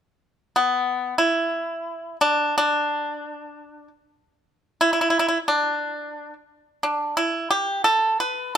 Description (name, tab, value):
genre	chinese traditional, Chinese solo plucked strings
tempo	free time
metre	none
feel	none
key	D zhi mode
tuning	A4 = 443 Hz
part	pipa	solo	0.6-8.6 s	B3 to B4	-20 LUFS	equal	none
room	light reverb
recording	close, detailed microphones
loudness	-20 LUFS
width	side -9 dB against mid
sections	0.1-6.5 A section; 6.5-8.6 B section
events	none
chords	none